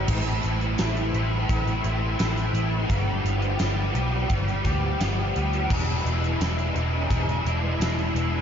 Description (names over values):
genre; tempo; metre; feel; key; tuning
rock, shoegaze and dream pop; 86 BPM; 4/4; straight; unclear; A4 = 439 Hz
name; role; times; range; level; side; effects
biting overdriven guitar; riff; 0.0-8.4 s; E2 to G4; -26 LUFS; left 1 dB; ensemble chorus
vintage muted picked electric bass; bass; 0.0-8.4 s; E1 to D2; -26 LUFS; equal; none
gated 80s drum kit; drums; 0.1-8.3 s; crash cymbal, hi-hat, kick drum, snare drum; -29 LUFS; equal; none
room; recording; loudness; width
light reverb, small room ambience; nothing above 7.5 kHz; -22 LUFS; side -8 dB against mid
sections
0.0-8.4 A section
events
none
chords
0.1 Am; 2.9 G7; 5.7 E7